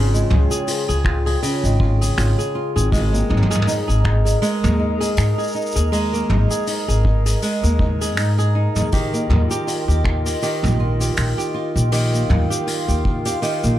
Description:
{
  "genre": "folktronica",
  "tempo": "80 BPM",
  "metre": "4/4",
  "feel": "swing 56% on 16ths",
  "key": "unclear",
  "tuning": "A4 = 441 Hz",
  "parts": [
    { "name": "warbly tape-like pad", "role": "sustained chords", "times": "0.0-13.8 s", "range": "F4 to Bb5", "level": "-26 LUFS", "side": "equal", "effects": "chorus, built-in reverb, vintage 12-bit sampler grit" },
    { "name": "flamenco guitar", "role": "arpeggios", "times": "0.0-13.8 s", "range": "Db3 to Ab4", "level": "-23 LUFS", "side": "right 1 dB", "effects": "tape echo" },
    { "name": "upright bass", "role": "bass", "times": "0.0-13.8 s", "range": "Ab1 to Ab2", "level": "-18 LUFS", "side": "equal", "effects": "none" },
    { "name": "vintage brush drum kit", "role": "drums", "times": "0.1-13.8 s", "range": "finger snaps, hi-hat, shaker, toms", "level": "-25 LUFS", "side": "equal", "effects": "none" },
    { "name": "kick drum", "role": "drums", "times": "1.0-13.2 s", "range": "none", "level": "-22 LUFS", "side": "equal", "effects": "none" }
  ],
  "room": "light reverb",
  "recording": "dark, warm production",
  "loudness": "-16 LUFS",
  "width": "side -13 dB against mid",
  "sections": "0.0-13.8 A section",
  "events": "none",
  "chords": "0.0 Db; 2.9 Absus2; 8.9 Ebadd9"
}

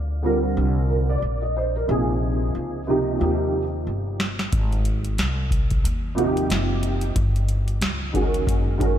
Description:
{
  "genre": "hip hop, jazz-hop",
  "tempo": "91 BPM",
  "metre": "4/4",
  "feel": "swing 58% on 16ths",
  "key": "unclear",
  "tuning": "A4 = 438 Hz",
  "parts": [
    { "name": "upright bass", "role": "bass", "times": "0.0-9.0 s", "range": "F#1 to Eb2", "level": "-24 LUFS", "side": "equal", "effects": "none" },
    { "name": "dark concert grand piano", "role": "accompaniment", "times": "0.2-9.0 s", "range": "C3 to Eb5", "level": "-24 LUFS", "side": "right 2 dB", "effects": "ensemble chorus" },
    { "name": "booming analog drum machine", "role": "drums", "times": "4.2-9.0 s", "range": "hi-hat, kick drum, snare drum", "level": "-23 LUFS", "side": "equal", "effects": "none" }
  ],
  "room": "light reverb, studio ambience",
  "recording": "none",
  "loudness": "-20 LUFS",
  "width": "side -10 dB against mid",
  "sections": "0.0-9.0 A section",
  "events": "drum fill 3.2-4.5",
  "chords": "0.0 Eb69 (rootless); 1.9 Bbm7; 3.2 Eb69; 4.5 Abmaj9; 7.2 Gdim; 8.5 F#add9"
}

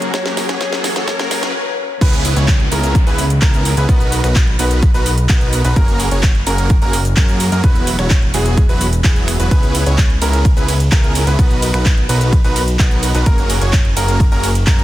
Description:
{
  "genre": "EDM, festival progressive house",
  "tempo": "128 BPM",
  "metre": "4/4",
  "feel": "straight",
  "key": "B major",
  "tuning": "A4 = 440 Hz",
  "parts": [
    { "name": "kalimba", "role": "melody", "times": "0.0-1.5 s", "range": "C#5", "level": "-27 LUFS", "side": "left 5 dB", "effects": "dub echo" },
    { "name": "semi-hollow electric guitar", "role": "accompaniment", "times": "0.0-1.5 s", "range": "F#3 to G#4", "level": "-27 LUFS", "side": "left 5 dB", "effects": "sidechain pumping, dub echo" },
    { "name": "lush unison pad", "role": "sustained chords", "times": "0.0-1.5 s", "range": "C#3 to A#4", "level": "-35 LUFS", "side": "left 2 dB", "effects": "none" },
    { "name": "supersaw chords", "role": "riff", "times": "0.0-14.8 s", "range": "F#3 to C#5", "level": "-21 LUFS", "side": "right 1 dB", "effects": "sidechain pumping, dub echo" },
    { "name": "house drum kit", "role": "drums", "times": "0.0-14.8 s", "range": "crash cymbal, finger snaps, handclaps, hi-hat, ride cymbal, shaker, snare drum", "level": "-22 LUFS", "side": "right 1 dB", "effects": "high-pass filter on snare, high-pass filter on hats, high-pass filter on cymbals, high-pass filter on perc" },
    { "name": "riser and downlifter", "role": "sound effects", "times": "0.0-5.8 s", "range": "none", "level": "-26 LUFS", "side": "equal", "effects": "none" },
    { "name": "electronic kick drum", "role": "drums", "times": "0.1-14.8 s", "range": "none", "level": "-13 LUFS", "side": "equal", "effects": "high-pass filter on kick" },
    { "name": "bright baby grand piano", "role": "arpeggios", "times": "2.0-14.8 s", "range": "B3 to C#5", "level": "-24 LUFS", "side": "equal", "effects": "sidechain pumping, dub echo" },
    { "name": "fat analog bass", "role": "bass", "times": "2.0-14.8 s", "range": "E1 to F#2", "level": "-17 LUFS", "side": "equal", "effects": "sidechain pumping" }
  ],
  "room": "little or no reverb",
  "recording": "dense, heavily limited modern master, high-pass filter",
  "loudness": "-12 LUFS",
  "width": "side -15 dB against mid",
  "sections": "0.0-2.0 A section; 2.0-14.8 B section",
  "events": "build-up 0.0-2.0; drum fill 0.0-1.5; riser 0.0-1.5; stop 1.5-2.0; drop 2.0-14.8",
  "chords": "0.1 Esus2; 2.0 C#m7; 3.9 Bmaj7; 5.8 F#add9; 7.6 Esus2; 9.5 C#m7; 11.4 Bmaj7; 13.3 F#add9"
}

